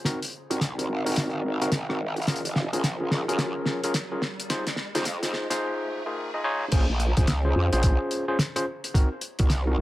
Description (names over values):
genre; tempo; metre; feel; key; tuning
glitch hop; 108 BPM; 4/4; swing 62% on 16ths; Bb minor; A4 = 440 Hz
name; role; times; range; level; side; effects
cloth-damped thuddy drum kit; drums; 0.0-9.6 s; crash cymbal, hi-hat, rim click, snare drum; -28 LUFS; equal; none
riser; sound effects; 0.3-6.7 s; none; -40 LUFS; right 1 dB; none
overdriven tine electric piano; stabs; 0.1-9.8 s; C4 to Eb5; -29 LUFS; equal; sidechain pumping, low-pass filter, dub echo
electronic kick drum; drums; 0.1-9.5 s; none; -22 LUFS; equal; overdrive, high-pass filter on kick
growl bass; bass; 0.5-9.8 s; Gb1 to Gb2; -27 LUFS; equal; chorus, high-pass filter
room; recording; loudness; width
light reverb; high-pass filter; -24 LUFS; side -16 dB against mid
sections
0.0-6.7 A section; 6.7-9.8 B section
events
build-up 0.0-6.7; drum fill 0.0-5.6; filter sweep on tine electric piano 0.0-6.7; riser 0.3-6.7; drop 6.7-9.8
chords
0.1 Ab7; 2.3 Gbmaj9; 4.5 Dbmaj7 (rootless); 6.7 Bbm7; 8.9 Ab7 (rootless)